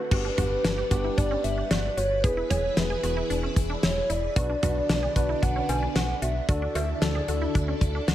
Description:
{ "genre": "synth-pop", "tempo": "113 BPM", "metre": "4/4", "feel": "straight", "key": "unclear", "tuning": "A4 = 440 Hz", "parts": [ { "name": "hollow clarinet-like synth lead", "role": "melody", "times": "0.0-7.8 s", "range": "B4 to G#5", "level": "-29 LUFS", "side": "right 1 dB", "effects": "chorus, digital delay" }, { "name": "string machine, violins", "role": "sustained chords", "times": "0.0-8.1 s", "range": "D3 to F#5", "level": "-35 LUFS", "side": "equal", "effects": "phaser, ensemble chorus" }, { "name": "resonant blip pluck", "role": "arpeggios", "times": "0.0-8.1 s", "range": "C#4 to G#4", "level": "-36 LUFS", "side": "right 2 dB", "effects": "chorus, digital delay" }, { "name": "tine electric piano", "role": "accompaniment", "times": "0.1-8.0 s", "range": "B3 to B4", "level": "-34 LUFS", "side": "left 2 dB", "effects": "medium stereo tremolo" }, { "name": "solid FM bass", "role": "bass", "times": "0.1-8.1 s", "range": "E1 to D2", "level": "-30 LUFS", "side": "equal", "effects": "none" }, { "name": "damped 70s drum kit", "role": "drums", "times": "0.1-8.1 s", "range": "cowbell, crash cymbal, hi-hat, kick drum, snare drum, toms", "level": "-26 LUFS", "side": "equal", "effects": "gated reverb" } ], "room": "light reverb, small room ambience", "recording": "none", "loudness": "-23 LUFS", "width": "side -12 dB against mid", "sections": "0.1-8.1 A section", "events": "none", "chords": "0.1 Gmaj7; 2.2 E; 4.4 Bm; 6.5 Dadd9" }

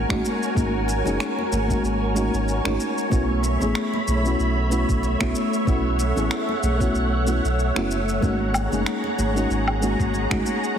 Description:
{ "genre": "sunset chillout", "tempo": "94 BPM", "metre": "4/4", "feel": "swing 55% on 16ths", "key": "unclear", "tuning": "A4 = 440 Hz", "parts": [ { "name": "mellow FM electric piano", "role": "accompaniment", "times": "0.0-10.8 s", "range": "G#3 to G#4", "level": "-25 LUFS", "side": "left 1 dB", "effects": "chorus, auto-pan, cassette tape, ping-pong delay" }, { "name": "soft string machine", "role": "sustained chords", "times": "0.0-10.8 s", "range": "A3 to B5", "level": "-26 LUFS", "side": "equal", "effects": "ensemble chorus" }, { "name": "warm sub bass", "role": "bass", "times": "0.0-10.4 s", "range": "F#1 to B1", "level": "-25 LUFS", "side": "equal", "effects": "none" }, { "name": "electronic finger snaps, shaker and woodblock", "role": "drums", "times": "0.1-10.8 s", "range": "none", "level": "-30 LUFS", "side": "left 1 dB", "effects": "small room reverb" }, { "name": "electronic kick drum", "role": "drums", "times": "0.1-10.4 s", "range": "none", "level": "-27 LUFS", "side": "right 1 dB", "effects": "small room reverb" }, { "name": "congas", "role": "percussion", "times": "0.1-10.4 s", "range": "none", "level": "-33 LUFS", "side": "right 1 dB", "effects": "none" } ], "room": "moderate scoring stage reverb, RT60 1.9 s", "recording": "heavily compressed radio sound, multiband compression", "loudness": "-20 LUFS", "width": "side -8 dB against mid", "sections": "0.0-10.8 A section", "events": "none", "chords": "0.0 G#9sus4; 3.1 B9sus4; 8.2 G#9sus4" }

